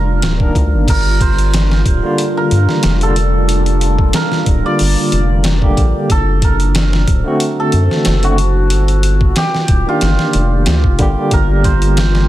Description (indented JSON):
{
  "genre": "trip hop",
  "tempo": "92 BPM",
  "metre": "4/4",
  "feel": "swing 53% on 16ths",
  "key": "G minor",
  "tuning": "A4 = 440 Hz",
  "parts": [
    { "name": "hammered dulcimer", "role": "melody", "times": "0.0-12.3 s", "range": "F4 to D5", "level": "-21 LUFS", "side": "right 1 dB", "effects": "tape echo" },
    { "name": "deep dark ambient pad", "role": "sustained chords", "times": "0.0-12.3 s", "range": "G3 to D5", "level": "-22 LUFS", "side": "right 2 dB", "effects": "chorus, built-in reverb" },
    { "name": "round analog bass", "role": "bass", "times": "0.0-12.3 s", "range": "D1 to G2", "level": "-14 LUFS", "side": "equal", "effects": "none" },
    { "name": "trip hop sampler-style drum kit", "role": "drums", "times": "0.2-12.3 s", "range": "crash cymbal, hi-hat, kick drum, snare drum", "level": "-16 LUFS", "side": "equal", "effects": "none" },
    { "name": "barky tine electric piano", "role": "accompaniment", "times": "0.4-12.3 s", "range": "D3 to Bb4", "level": "-18 LUFS", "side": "equal", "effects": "overdrive, tremolo" }
  ],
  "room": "digital ambience",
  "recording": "dense, heavily limited modern master",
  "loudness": "-11 LUFS",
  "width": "side -14 dB against mid",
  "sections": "0.9-12.3 A section",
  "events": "none",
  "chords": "0.0 Ebmaj7; 0.9 Gm7; 6.1 D7; 8.7 Ebmaj7; 11.3 Gm7",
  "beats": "0.23 | 0.88 1.54 2.19 2.84 | 3.49 4.14 4.80 5.45 | 6.10 6.75 7.41 8.06 | 8.71 9.36 10.01 10.67 | 11.32 11.97"
}